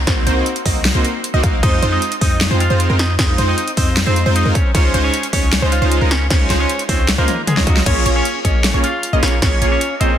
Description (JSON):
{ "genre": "future bass", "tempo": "154 BPM", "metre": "4/4", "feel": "half-time", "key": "Bb minor", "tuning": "A4 = 440 Hz", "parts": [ { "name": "warm 808-style bass", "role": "bass", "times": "0.0-10.2 s", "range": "Bb1 to F2", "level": "-18 LUFS", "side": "equal", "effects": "sidechain pumping" }, { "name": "wide unison pluck", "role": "arpeggios", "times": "0.1-10.1 s", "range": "Bb4 to F5", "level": "-26 LUFS", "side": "right 1 dB", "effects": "sidechain pumping, ping-pong delay" }, { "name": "soft supersaw", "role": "riff", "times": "0.1-10.1 s", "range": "Ab3 to F5", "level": "-20 LUFS", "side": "right 1 dB", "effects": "sidechain pumping, ping-pong delay" }, { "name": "big-room dance drum kit", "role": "drums", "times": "0.1-10.1 s", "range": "crash cymbal, hi-hat, snare drum, toms", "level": "-20 LUFS", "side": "equal", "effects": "none" }, { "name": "electronic kick drum", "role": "drums", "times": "0.1-9.5 s", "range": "none", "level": "-18 LUFS", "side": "equal", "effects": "none" }, { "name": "clean electric guitar", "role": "melody", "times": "1.6-10.2 s", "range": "Gb3 to F5", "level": "-22 LUFS", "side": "equal", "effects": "sidechain pumping, digital delay" } ], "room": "light reverb, digital ambience", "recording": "dense, heavily limited modern master", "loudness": "-13 LUFS", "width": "side -10 dB against mid", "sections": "0.0-7.9 A section; 7.9-10.2 A section", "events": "drop 0.0-7.9, 7.9-10.2; drum fill 7.3-7.9", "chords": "0.0 Cm7b5; 1.6 Fm7; 4.6 Dbmaj9; 7.9 Bbm7" }